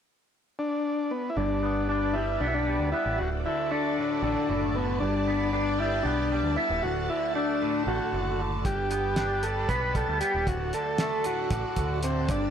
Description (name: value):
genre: psychedelic rock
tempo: 231 BPM (eighths)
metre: 7/8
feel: straight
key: D major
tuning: A4 = 440 Hz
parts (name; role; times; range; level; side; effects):
- overdriven combo organ; melody; 0.6-12.5 s; B3 to B4; -28 LUFS; left 1 dB; slapback echo
- string machine, full ensemble; sustained chords; 1.4-12.5 s; F#4 to A5; -38 LUFS; right 3 dB; ensemble chorus
- twangy electric guitar; riff; 1.4-12.5 s; D2 to D4; -31 LUFS; right 1 dB; phaser, double-tracked left and right
- deep dub picked electric bass; bass; 1.4-12.5 s; D1 to D2; -31 LUFS; right 1 dB; none
- cloth-damped thuddy drum kit; drums; 8.6-12.4 s; hi-hat, kick drum, snare drum; -31 LUFS; equal; none
room: light reverb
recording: none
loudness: -25 LUFS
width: side -8 dB against mid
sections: 0.0-1.4 A section; 1.4-12.5 B section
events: none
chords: 0.0 N.C.; 1.4 Gadd9; 3.2 D; 5.0 Gadd9; 6.8 D; 8.6 Gadd9; 10.5 D